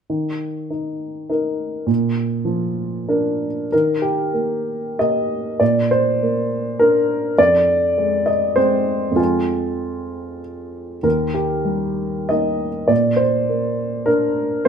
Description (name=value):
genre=neoclassical minimalist piano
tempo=89-104 BPM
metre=3/4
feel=rubato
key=unclear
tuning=A4 = 440 Hz
part: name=warm upright piano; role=solo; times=0.1-14.7 s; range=Eb2 to C6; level=-17 LUFS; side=equal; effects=none
room=moderate studio reverb, RT60 0.7 s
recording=band playing live in one room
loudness=-17 LUFS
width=side -7 dB against mid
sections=0.1-3.7 A section; 3.7-14.7 B section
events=none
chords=0.1 Eb5; 1.9 Bb; 3.7 Eb; 5.6 Bb; 7.4 Fm; 11.0 Eb; 12.9 Bb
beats=| 0.10 0.71 1.31 | 1.89 2.47 3.08 | 3.72 4.33 4.99 | 5.61 6.20 6.79 | 7.38 7.97 8.57 | 9.18 9.80 10.42 | 11.04 11.66 12.30 | 12.90 13.50 14.10 | 14.67